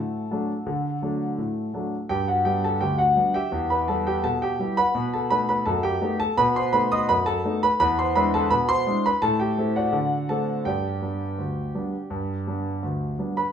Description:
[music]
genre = ragtime piano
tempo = 84 BPM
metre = 2/4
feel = straight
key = G major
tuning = A4 = 436 Hz
[part]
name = clear grand piano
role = solo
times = 0.0-13.5 s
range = D2 to D#6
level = -21 LUFS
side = equal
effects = none
[sound]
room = wet large studio reverb, RT60 0.9 s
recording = band playing live in one room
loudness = -21 LUFS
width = side -8 dB against mid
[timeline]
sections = 0.0-13.5 A section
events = none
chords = 0.0 D; 2.1 G; 3.5 Em; 5.0 B7; 7.8 E7; 9.2 Am; 9.9 D7; 10.7 G

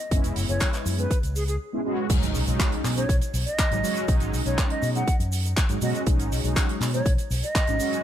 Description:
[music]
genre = nu-disco, nu disco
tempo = 121 BPM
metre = 4/4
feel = straight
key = B major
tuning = A4 = 439 Hz
[part]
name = mellow hollow jazz flute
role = melody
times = 0.0-8.0 s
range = G#4 to F#5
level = -31 LUFS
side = equal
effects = vintage 12-bit sampler grit, ping-pong delay
[part]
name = mellow synth brass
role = accompaniment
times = 0.1-8.0 s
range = F#3 to F#4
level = -29 LUFS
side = right 1 dB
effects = chorus
[part]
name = fingered electric bass with an envelope filter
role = bass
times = 0.1-7.8 s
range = E1 to B2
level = -27 LUFS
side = equal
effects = sidechain pumping
[part]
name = damped 70s drum kit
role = drums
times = 0.1-8.0 s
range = crash cymbal, handclaps, hi-hat, shaker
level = -30 LUFS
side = right 1 dB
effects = none
[part]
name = electronic kick drum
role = drums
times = 0.1-7.7 s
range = none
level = -23 LUFS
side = equal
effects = none
[part]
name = impact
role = sound effects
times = 2.1-4.1 s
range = none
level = -35 LUFS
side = equal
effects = none
[sound]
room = small room ambience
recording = none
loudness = -22 LUFS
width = side -11 dB against mid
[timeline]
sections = 0.0-2.1 A section; 2.1-8.0 B section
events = break 1.6-2.1; drop 2.1-8.0; impact 2.1-4.1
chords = 0.0 F#9sus4; 2.1 B6

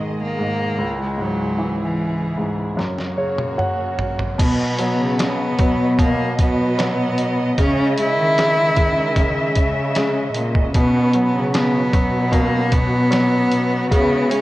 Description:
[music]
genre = pop ballad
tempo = 76 BPM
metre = 4/4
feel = straight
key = B major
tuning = A4 = 440 Hz
[part]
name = clear cello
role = melody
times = 0.0-14.4 s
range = E3 to E4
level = -20 LUFS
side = equal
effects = none
[part]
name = clear concert grand piano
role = accompaniment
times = 0.0-14.4 s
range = C#2 to F#5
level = -22 LUFS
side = equal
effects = none
[part]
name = dark studio string section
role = sustained chords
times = 0.0-14.4 s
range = C#2 to E5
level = -27 LUFS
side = right 1 dB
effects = none
[part]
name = trip hop sampler-style drum kit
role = drums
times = 2.8-14.4 s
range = crash cymbal, hi-hat, kick drum, snare drum, toms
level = -21 LUFS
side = equal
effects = none
[part]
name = dark symphonic cello section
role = bass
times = 4.4-14.4 s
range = A#2 to D#3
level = -22 LUFS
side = equal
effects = none
[sound]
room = light reverb, small room ambience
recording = worn, warbling old tape, cassette tape, warbly pitch drift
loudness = -16 LUFS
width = side -17 dB against mid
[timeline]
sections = 0.0-4.4 A section; 4.4-14.4 B section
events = grand piano fill 2.8-4.4; drum fill 2.8-4.4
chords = 0.0 G#m; 0.8 C#m; 2.8 F#; 4.4 B; 7.6 C#m; 10.8 B5

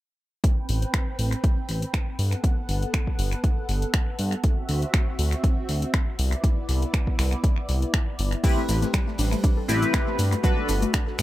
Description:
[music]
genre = deep house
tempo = 120 BPM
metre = 4/4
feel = swing 54% on 16ths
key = A dorian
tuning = A4 = 438 Hz
[part]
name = warm analog pad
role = sustained chords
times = 0.4-11.2 s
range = G3 to G5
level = -33 LUFS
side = right 1 dB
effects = chorus, sidechain pumping
[part]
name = electronic kick drum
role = drums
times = 0.4-11.0 s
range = none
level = -23 LUFS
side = equal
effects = overdrive
[part]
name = punchy analog drum machine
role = drums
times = 0.4-11.2 s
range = crash cymbal, finger snaps, hi-hat, shaker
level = -31 LUFS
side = left 1 dB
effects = tape echo
[part]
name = smooth synth bass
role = bass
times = 0.7-11.2 s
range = G1 to G2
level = -24 LUFS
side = equal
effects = sidechain pumping
[part]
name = mallet-like synth pluck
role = arpeggios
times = 8.4-11.2 s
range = G3 to A4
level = -31 LUFS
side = left 3 dB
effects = chorus, sidechain pumping, tape echo
[part]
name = chorused polysynth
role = stabs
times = 8.4-10.7 s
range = C4 to B4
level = -27 LUFS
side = left 1 dB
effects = phaser, cassette tape, sidechain pumping, analog delay
[part]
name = warm soul drum kit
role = drums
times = 8.4-11.2 s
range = hi-hat, shaker, snare drum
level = -43 LUFS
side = right 1 dB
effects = none
[sound]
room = little or no reverb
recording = echo-heavy mix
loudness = -22 LUFS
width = side -16 dB against mid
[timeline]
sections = 0.4-8.4 A section; 8.4-11.2 B section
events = filter sweep on analog synth bass 0.4-8.4; filter sweep on synth arpeggio sound 8.4-11.2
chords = 0.4 Am9; 2.2 Gmaj9; 4.4 D9; 6.2 Cmaj9; 8.4 Am9; 10.2 Gmaj9

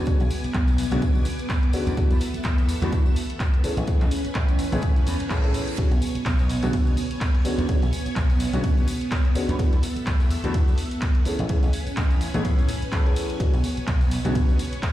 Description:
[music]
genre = filtered disco house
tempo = 126 BPM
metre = 4/4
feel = swing 56% on 16ths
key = B dorian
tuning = A4 = 443 Hz
[part]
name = clear concert grand piano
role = accompaniment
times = 0.0-14.6 s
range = D3 to G#4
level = -30 LUFS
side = left 1 dB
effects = phaser, vintage 12-bit sampler grit, sidechain pumping
[part]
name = string machine, full ensemble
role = sustained chords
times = 0.0-14.9 s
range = B3 to D6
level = -31 LUFS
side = right 1 dB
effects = ensemble chorus, sidechain pumping
[part]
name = vintage slap bass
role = bass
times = 0.0-14.5 s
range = A1 to A2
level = -27 LUFS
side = equal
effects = sidechain pumping
[part]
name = electronic kick drum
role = drums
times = 0.1-14.9 s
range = none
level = -22 LUFS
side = equal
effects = none
[part]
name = punchy analog drum machine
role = drums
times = 0.1-14.9 s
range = handclaps, hi-hat, ride cymbal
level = -35 LUFS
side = equal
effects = sidechain pumping on hats, sidechain pumping on cymbals
[part]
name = tambourine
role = percussion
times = 0.1-14.9 s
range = none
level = -43 LUFS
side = left 4 dB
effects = sidechain pumping on perc
[part]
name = reverse cymbal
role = sound effects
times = 5.0-5.8 s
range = none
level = -39 LUFS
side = right 3 dB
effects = none
[sound]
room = little or no reverb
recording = played on a big sound system in a bare room, large studio reverb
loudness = -20 LUFS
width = side -14 dB against mid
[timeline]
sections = 0.0-14.9 A section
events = reverse cymbal 5.0-5.8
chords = 0.0 Bm69; 2.0 E7sus4; 3.6 Amaj9; 5.8 Bm69; 9.6 E7sus4; 11.3 Amaj9; 13.4 Bm69

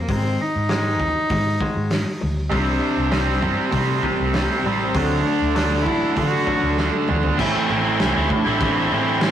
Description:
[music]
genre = quiet-loud alternative rock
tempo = 99 BPM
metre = 4/4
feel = straight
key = unclear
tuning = A4 = 438 Hz
[part]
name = rich cello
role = melody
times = 0.0-9.3 s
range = A3 to F#4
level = -25 LUFS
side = left 1 dB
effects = none
[part]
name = clean electric guitar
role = arpeggios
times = 0.0-7.4 s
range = G#2 to C4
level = -28 LUFS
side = left 2 dB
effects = none
[part]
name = hollow-body short-scale picked electric bass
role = bass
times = 0.0-9.3 s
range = A1 to D3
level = -25 LUFS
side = equal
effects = none
[part]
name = loose indie drum kit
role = drums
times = 0.1-9.3 s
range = crash cymbal, hi-hat, kick drum, snare drum, toms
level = -26 LUFS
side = equal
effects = none
[part]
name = overdriven electric guitar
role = riff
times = 2.5-9.3 s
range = A2 to E4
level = -20 LUFS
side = right 3 dB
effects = none
[part]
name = distorted electric guitar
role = riff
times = 7.4-9.3 s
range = A2 to E4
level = -24 LUFS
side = left 5 dB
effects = overdrive
[sound]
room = moderate small room reverb, RT60 0.6 s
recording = rough rehearsal-room recording, warm saturation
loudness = -18 LUFS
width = side -10 dB against mid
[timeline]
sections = 0.0-7.4 A section; 7.4-9.3 B section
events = drum fill 6.8-7.4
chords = 0.1 G#5; 2.5 C5; 5.0 D; 7.4 Am

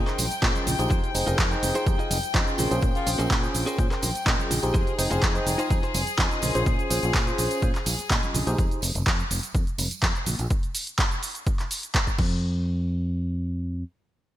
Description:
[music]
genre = filtered disco house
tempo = 125 BPM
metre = 4/4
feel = straight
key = F minor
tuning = A4 = 440 Hz
[part]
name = clear horn section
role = melody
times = 0.0-3.1 s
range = Eb3 to F4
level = -36 LUFS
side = left 3 dB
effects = sidechain pumping, ping-pong delay
[part]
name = mellow tine electric piano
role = accompaniment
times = 0.0-8.8 s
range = Db4 to G5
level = -30 LUFS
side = equal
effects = phaser, sidechain pumping
[part]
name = clear chamber violin section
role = sustained chords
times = 0.0-8.6 s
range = Ab4 to G5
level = -32 LUFS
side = left 4 dB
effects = sidechain pumping
[part]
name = fingered electric bass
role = bass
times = 0.0-13.8 s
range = F1 to Bb2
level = -28 LUFS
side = equal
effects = sidechain pumping
[part]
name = direct-recorded clean electric guitar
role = riff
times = 0.1-6.6 s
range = Db4 to Eb5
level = -33 LUFS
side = equal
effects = sidechain pumping
[part]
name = punchy analog drum machine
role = drums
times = 0.1-12.3 s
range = crash cymbal, handclaps, hi-hat, shaker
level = -28 LUFS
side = right 1 dB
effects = sidechain pumping on hats, sidechain pumping on perc, sidechain pumping on cymbals
[part]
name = tambourine and congas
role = percussion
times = 0.2-10.5 s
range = none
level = -36 LUFS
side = right 5 dB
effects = sidechain pumping on perc
[part]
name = electronic kick drum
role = drums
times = 0.4-12.3 s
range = none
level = -25 LUFS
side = equal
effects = none
[sound]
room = light reverb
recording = bright 1980s-style digital production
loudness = -22 LUFS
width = side -13 dB against mid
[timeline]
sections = 0.0-12.4 A section; 12.4-14.4 B section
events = drop 0.0-12.4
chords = 0.0 Bbm9; 0.9 Fm7; 2.6 Bbm9; 4.7 Fm7; 6.4 Bbm9; 8.6 Fm7; 10.3 N.C.

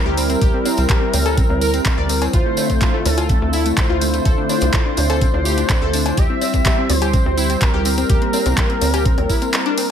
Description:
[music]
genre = progressive house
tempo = 125 BPM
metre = 4/4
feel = straight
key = unclear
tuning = A4 = 440 Hz
[part]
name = expressive portamento lead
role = melody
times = 0.0-9.9 s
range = A4 to E5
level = -23 LUFS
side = equal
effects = analog chorus, dub echo
[part]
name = warm analog pad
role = sustained chords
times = 0.0-9.9 s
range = D3 to F4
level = -23 LUFS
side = right 1 dB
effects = chorus, sidechain pumping
[part]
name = analog pluck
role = arpeggios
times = 0.1-9.9 s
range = A3 to D5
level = -23 LUFS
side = left 1 dB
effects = chorus, sidechain pumping, dub echo
[part]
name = tight sequencer bass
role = bass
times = 0.1-9.3 s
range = C2 to D2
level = -20 LUFS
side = equal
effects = sidechain pumping
[part]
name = house drum kit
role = drums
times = 0.2-9.9 s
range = handclaps, hi-hat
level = -24 LUFS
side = left 1 dB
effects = studio reverb
[part]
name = tambourine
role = percussion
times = 0.2-9.9 s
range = none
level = -29 LUFS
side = right 3 dB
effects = none
[part]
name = electronic kick drum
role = drums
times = 0.4-9.4 s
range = none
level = -17 LUFS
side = equal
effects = studio reverb
[part]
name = bongos, cowbell and congas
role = percussion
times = 0.7-9.3 s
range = none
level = -29 LUFS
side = left 4 dB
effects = sidechain pumping on perc, studio reverb
[sound]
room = light reverb, digital ambience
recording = none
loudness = -14 LUFS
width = side -8 dB against mid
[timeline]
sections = 0.0-9.9 A section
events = none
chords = 0.0 C; 2.3 Dm7; 6.2 C

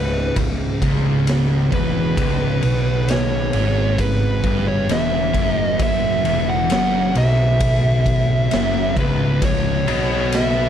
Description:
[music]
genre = stoner and doom metal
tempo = 66 BPM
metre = 4/4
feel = straight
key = C# minor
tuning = A4 = 440 Hz
[part]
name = fuzz lead guitar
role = melody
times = 0.0-10.7 s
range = B4 to F#5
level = -22 LUFS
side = right 1 dB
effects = distortion, slapback echo
[part]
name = deep rumbling drone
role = sustained chords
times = 0.0-10.7 s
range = C#3 to G#4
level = -31 LUFS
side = right 2 dB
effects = built-in reverb
[part]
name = fuzz guitar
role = riff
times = 0.0-10.7 s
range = C#2 to B2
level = -22 LUFS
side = left 6 dB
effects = distortion
[part]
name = thick fuzz guitar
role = riff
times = 0.0-10.7 s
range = C#2 to B2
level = -23 LUFS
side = right 7 dB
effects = distortion
[part]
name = fuzz picked electric bass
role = bass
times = 0.0-10.7 s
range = C#1 to B1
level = -24 LUFS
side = equal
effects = overdrive
[part]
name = raw garage drum kit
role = drums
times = 0.4-10.6 s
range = kick drum, ride cymbal, snare drum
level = -23 LUFS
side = equal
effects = none
[sound]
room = studio reverb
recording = dark, warm production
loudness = -16 LUFS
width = side -9 dB against mid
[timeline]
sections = 0.0-10.7 A section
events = none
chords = 0.0 C#m

